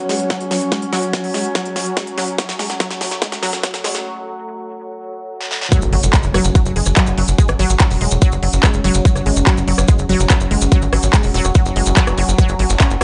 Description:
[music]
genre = psychedelic trance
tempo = 144 BPM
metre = 4/4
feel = straight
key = F# minor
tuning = A4 = 443 Hz
[part]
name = evolving wavetable pad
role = sustained chords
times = 0.0-13.0 s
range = F#3 to C#4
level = -27 LUFS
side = equal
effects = phaser, built-in reverb, sidechain pumping
[part]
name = airy breathy pad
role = texture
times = 0.0-4.1 s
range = C#4 to C#6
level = -33 LUFS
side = equal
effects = chorus, sidechain pumping
[part]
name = unison pluck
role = riff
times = 0.1-13.0 s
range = F#3 to C#4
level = -25 LUFS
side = equal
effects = sidechain pumping, dub echo
[part]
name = big-room dance drum kit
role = drums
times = 0.1-13.0 s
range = handclaps, hi-hat, rim click, snare drum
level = -24 LUFS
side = equal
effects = high-pass filter on snare, small room reverb, high-pass filter on hats
[part]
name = electronic kick drum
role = drums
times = 0.3-12.9 s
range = none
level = -16 LUFS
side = equal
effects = high-pass filter on kick, small room reverb
[part]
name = maracas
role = percussion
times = 5.7-13.0 s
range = none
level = -28 LUFS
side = equal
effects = none
[part]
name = impact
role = sound effects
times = 5.8-7.4 s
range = none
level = -27 LUFS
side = equal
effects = none
[part]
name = tight sequencer bass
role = bass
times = 5.8-13.0 s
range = E1 to G#1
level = -20 LUFS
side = equal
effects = none
[sound]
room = digital ambience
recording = high-pass filter, nothing above 10.3 kHz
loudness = -16 LUFS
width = mono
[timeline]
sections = 0.0-5.7 A section; 5.7-13.0 B section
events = build-up 0.0-5.7; drum fill 0.0-4.1, 5.4-5.7; filter sweep on synth arpeggio sound 0.0-5.7; filter sweep 0.0-5.7; break 4.1-5.7; drop 5.7-13.0; impact 5.7-7.4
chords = 0.0 F#5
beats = 0.30 | 0.72 1.14 1.55 1.97 | 2.38 2.80 3.22 3.63 | 4.05 4.47 4.88 5.30 | 5.72 6.13 6.55 6.97 | 7.38 7.80 8.22 8.63 | 9.05 9.47 9.88 10.30 | 10.72 11.13 11.55 11.97 | 12.38 12.80

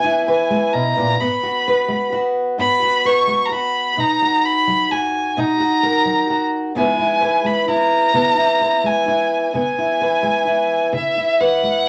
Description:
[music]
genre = acoustic folk-pop ballad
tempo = 43 BPM (dotted quarters)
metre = 6/8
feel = straight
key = unclear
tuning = A4 = 440 Hz
[part]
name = clear violin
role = melody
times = 0.0-11.9 s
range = E5 to C#6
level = -20 LUFS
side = equal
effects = none
[part]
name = fingerpicked steel-string acoustic guitar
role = accompaniment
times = 0.0-11.9 s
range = G#2 to B4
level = -21 LUFS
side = equal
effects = none
[sound]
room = wet studio reverb, RT60 0.6 s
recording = none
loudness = -18 LUFS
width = mono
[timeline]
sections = 0.0-11.9 A section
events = none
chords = 0.0 C#m7; 1.2 G#m7; 4.0 Bmaj7; 6.8 C#m7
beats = | 1.19 2.58 | 3.97 5.36 | 6.75 8.14 | 9.54 10.93

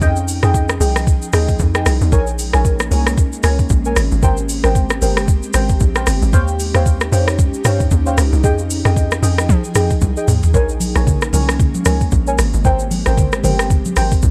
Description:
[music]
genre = amapiano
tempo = 114 BPM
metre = 4/4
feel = swing 58% on 16ths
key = Ab major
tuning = A4 = 440 Hz
[part]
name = ethereal airy pad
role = sustained chords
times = 0.0-14.3 s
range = F3 to G5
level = -27 LUFS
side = equal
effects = ensemble chorus, built-in reverb, sidechain pumping
[part]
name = deep mellow chord stab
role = stabs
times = 0.0-14.1 s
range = Ab4 to Ab5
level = -24 LUFS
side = equal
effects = chorus, phaser, tape echo
[part]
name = tight log drum bass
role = bass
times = 0.0-14.3 s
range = G1 to F3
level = -19 LUFS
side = equal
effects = none
[part]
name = smooth R&B drum kit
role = drums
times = 0.0-14.3 s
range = hi-hat, kick drum, rim click, shaker, toms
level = -19 LUFS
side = equal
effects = none
[part]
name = congas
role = percussion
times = 10.8-14.1 s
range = none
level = -24 LUFS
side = equal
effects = none
[sound]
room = little or no reverb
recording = dry, gritty hardware recording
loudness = -15 LUFS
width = mono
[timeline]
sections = 0.0-14.3 A section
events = drum fill 10.0-10.5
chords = 0.0 Fm9; 2.1 Bbm7; 4.0 Abmaj9; 6.3 Eb13; 8.4 Fm9; 10.5 Bbm7; 12.4 Abmaj9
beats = | 0.02 0.54 1.07 1.59 | 2.12 2.65 3.17 3.70 | 4.23 4.75 5.28 5.81 | 6.33 6.86 7.38 7.91 | 8.44 8.96 9.49 10.02 | 10.54 11.07 11.60 12.12 | 12.65 13.17 13.70 14.23

